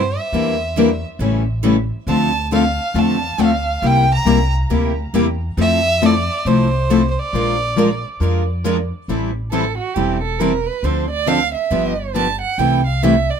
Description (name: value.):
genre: acoustic string swing (jazz manouche).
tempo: 137 BPM.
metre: 4/4.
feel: swing 62% on 8ths.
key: A minor.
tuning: A4 = 440 Hz.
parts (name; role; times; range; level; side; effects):
clear violin; melody; 0.0-8.1 s; C5 to Bb5; -20 LUFS; right 2 dB; plate reverb, tape echo.
upright bass; bass; 0.0-13.3 s; E1 to G2; -21 LUFS; equal; none.
picked steel-string acoustic guitar; accompaniment; 0.3-13.1 s; C3 to Bb4; -18 LUFS; left 6 dB; none.
picked steel-string acoustic guitar; accompaniment; 0.3-13.1 s; C3 to Bb4; -23 LUFS; right 6 dB; none.
warm violin; second line; 9.5-13.4 s; F#4 to A5; -20 LUFS; right 8 dB; none.
room: light reverb.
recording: close, detailed microphones.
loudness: -15 LUFS.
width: side -7 dB against mid.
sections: 0.0-9.1 A section; 9.1-13.4 B section.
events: violin solo 9.1-13.4.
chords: 0.3 Em7b5; 1.2 A7; 2.1 Dm7; 3.8 C7; 5.6 Fmaj7; 7.3 Bb7; 9.1 Am7; 10.8 Dm7; 11.7 G7; 12.6 C6.